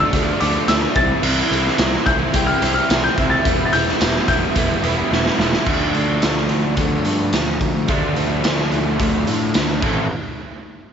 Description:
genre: indie rock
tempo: 108 BPM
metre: 4/4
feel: straight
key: unclear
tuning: A4 = 440 Hz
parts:
  - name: warm upright piano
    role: melody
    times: 0.0-5.1 s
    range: D6 to A6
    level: -22 LUFS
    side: left 2 dB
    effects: none
  - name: bright tine electric piano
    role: second line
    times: 0.0-5.4 s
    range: D5 to G5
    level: -30 LUFS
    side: left 12 dB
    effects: tape echo
  - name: biting overdriven guitar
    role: riff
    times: 0.0-10.1 s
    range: E3 to A4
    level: -24 LUFS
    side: left 12 dB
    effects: none
  - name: crunchy overdriven guitar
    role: riff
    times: 0.0-10.0 s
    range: E3 to E4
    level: -23 LUFS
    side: right 12 dB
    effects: analog chorus, tape echo
  - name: fuzz picked electric bass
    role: bass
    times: 0.0-10.1 s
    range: E1 to A2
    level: -23 LUFS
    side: equal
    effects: overdrive
  - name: raw garage drum kit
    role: drums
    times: 0.1-10.0 s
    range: crash cymbal, hi-hat, kick drum, snare drum, tambourine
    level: -20 LUFS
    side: right 1 dB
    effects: none
room: light reverb, small room ambience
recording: 1960s-style stereo with parts hard left and right, nothing above 7.7 kHz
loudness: -16 LUFS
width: side -7 dB against mid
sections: 0.0-5.7 A section; 5.7-10.1 B section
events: drum fill 5.1-5.7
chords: 0.0 Dm; 1.0 Am7/C; 3.5 Em; 5.7 Dm; 9.8 Am; 10.1 N.C.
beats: 0.13 0.69 | 1.24 1.79 2.35 2.90 | 3.46 4.01 4.56 5.12 | 5.67 6.23 6.78 7.33 | 7.89 8.44 8.99 9.55

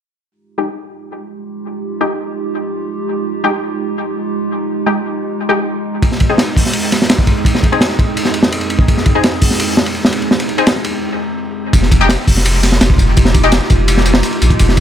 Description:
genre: drum and bass, jungle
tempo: 168 BPM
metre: 4/4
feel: straight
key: F minor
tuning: A4 = 440 Hz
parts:
  - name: warbly tape-like pad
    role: sustained chords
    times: 1.0-14.8 s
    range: F2 to Ab4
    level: -19 LUFS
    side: right 2 dB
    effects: chorus, built-in reverb, vintage 12-bit sampler grit
  - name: orchestra-hit-like synth stab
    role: stabs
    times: 0.6-13.5 s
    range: Ab3 to Ab4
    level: -19 LUFS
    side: left 3 dB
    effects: built-in reverb, dub echo
  - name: crunchy breakbeat drum kit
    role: drums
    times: 6.0-14.8 s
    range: hi-hat, kick drum, ride cymbal, snare drum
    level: -12 LUFS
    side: equal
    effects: none
  - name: soft dub sub bass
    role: bass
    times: 11.7-14.8 s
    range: F1 to Bb1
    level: -14 LUFS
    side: equal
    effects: none
  - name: dusty soul sampler-style drum kit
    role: drums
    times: 11.7-14.8 s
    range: hi-hat, snare drum, tambourine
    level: -25 LUFS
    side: equal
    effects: high-pass filter on perc, high-pass filter on snare, high-pass filter on hats, high-pass filter on room
room: studio reverb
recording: none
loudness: -12 LUFS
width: side -10 dB against mid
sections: 0.3-11.7 A section; 11.7-14.8 B section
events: filter sweep on synth stab 0.3-11.7; break 11.0-11.7; drop 11.7-14.8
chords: 0.3 Fm9; 6.0 Ab/F; 11.7 Fm9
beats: | 0.31 0.67 1.03 1.38 | 1.74 2.10 2.45 2.81 | 3.17 3.53 3.88 4.24 | 4.60 4.95 5.31 5.67 | 6.03 6.38 6.74 7.10 | 7.45 7.81 8.17 8.53 | 8.88 9.24 9.60 9.95 | 10.31 10.67 11.03 11.38 | 11.74 12.10 12.45 12.81 | 13.17 13.53 13.88 14.24 | 14.60

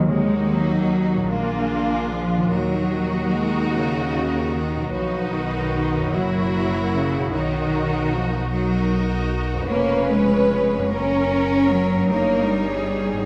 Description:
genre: classical, slow romantic movement for symphony orchestra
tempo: 50 BPM (dotted quarters)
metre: 6/8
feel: rubato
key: Eb minor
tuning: A4 = 440 Hz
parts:
  - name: concert harp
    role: arpeggios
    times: 0.0-13.3 s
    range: F2 to Db5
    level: -30 LUFS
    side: equal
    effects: none
  - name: rich studio cello section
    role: bass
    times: 0.0-13.3 s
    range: Db3 to Db4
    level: -25 LUFS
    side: equal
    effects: none
  - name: timpani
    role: percussion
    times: 0.0-1.3 s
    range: Eb3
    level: -27 LUFS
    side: equal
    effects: none
  - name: rich studio violin section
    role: melody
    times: 0.1-13.3 s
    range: Gb4 to Db5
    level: -36 LUFS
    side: equal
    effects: none
  - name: rich studio violin section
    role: second line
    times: 0.1-13.3 s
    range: Eb4 to Cb5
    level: -29 LUFS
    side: equal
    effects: none
  - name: rich studio viola section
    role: accompaniment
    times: 0.1-13.3 s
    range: Bb3 to Fb4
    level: -32 LUFS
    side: equal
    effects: none
  - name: rich studio double bass section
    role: bass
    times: 0.1-13.3 s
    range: F1 to Eb2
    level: -30 LUFS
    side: equal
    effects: none
room: wet scoring stage reverb, RT60 1.7 s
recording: none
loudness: -21 LUFS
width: mono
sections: 0.1-13.3 A section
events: none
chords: 0.1 Ebm; 1.3 Bb7; 2.5 Ebm; 4.9 B; 6.1 Gb7; 7.3 Bmaj7; 9.7 Db7/F; 10.9 Gb; 12.1 Eb7/G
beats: | 0.10 1.32 | 2.53 3.73 | 4.94 6.14 | 7.34 8.53 | 9.70 10.93 | 12.12

